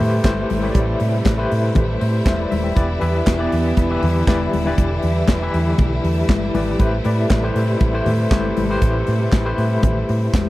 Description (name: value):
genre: disco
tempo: 119 BPM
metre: 4/4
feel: straight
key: A minor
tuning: A4 = 441 Hz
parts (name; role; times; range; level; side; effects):
- barky tine electric piano; accompaniment; 0.0-10.5 s; E3 to G5; -22 LUFS; left 2 dB; overdrive, fast tremolo
- clear studio string section; sustained chords; 0.0-10.5 s; C3 to E4; -25 LUFS; right 2 dB; none
- hollow-body short-scale fingered electric bass; bass; 0.0-10.5 s; D#1 to A2; -21 LUFS; right 1 dB; none
- congas; percussion; 0.0-10.5 s; none; -25 LUFS; left 5 dB; none
- modern studio drum kit; drums; 0.2-10.5 s; handclaps, hi-hat, kick drum, snare drum; -17 LUFS; equal; none
room: little or no reverb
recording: dry, close 1970s-style studio recording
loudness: -16 LUFS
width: side -17 dB against mid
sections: 0.0-10.5 A section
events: tine electric piano fill 1.8-2.8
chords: 0.0 Am7; 2.8 Em7; 6.8 Am7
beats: 0.25 | 0.75 1.25 1.76 2.26 | 2.77 3.27 3.77 4.28 | 4.78 5.29 5.79 6.30 | 6.80 7.30 7.81 8.32 | 8.82 9.33 9.83 10.34